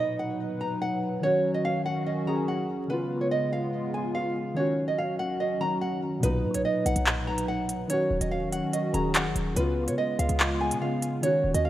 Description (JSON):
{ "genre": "hip hop, drill", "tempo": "144 BPM", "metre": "4/4", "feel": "half-time", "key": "Eb minor", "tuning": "A4 = 440 Hz", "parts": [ { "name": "nylon-string guitar", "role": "melody", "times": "0.0-11.7 s", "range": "Cb5 to A#5", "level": "-29 LUFS", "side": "right 2 dB", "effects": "digital delay" }, { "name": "warbly lo-fi synth keys", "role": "accompaniment", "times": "0.0-11.7 s", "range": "A#2 to Ab4", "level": "-31 LUFS", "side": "left 1 dB", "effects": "chorus" }, { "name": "dark analog pad", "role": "sustained chords", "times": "0.0-11.7 s", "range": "Db3 to B4", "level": "-32 LUFS", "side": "right 1 dB", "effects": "chorus" }, { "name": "short 808-style bass", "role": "bass", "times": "6.2-11.7 s", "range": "Eb1 to Db3", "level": "-30 LUFS", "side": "equal", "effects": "none" }, { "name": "drill drum kit", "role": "drums", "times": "6.2-11.6 s", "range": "handclaps, hi-hat", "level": "-28 LUFS", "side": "equal", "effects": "none" } ], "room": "light reverb", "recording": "rough home demo mix, vinyl crackle", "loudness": "-25 LUFS", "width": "side -13 dB against mid", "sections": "0.0-11.7 A section", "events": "none", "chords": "0.0 Bmaj7; 1.2 Ebm7; 2.9 Db7; 4.6 Ebm7; 6.2 Bmaj7; 7.9 Ebm7; 9.6 Db7" }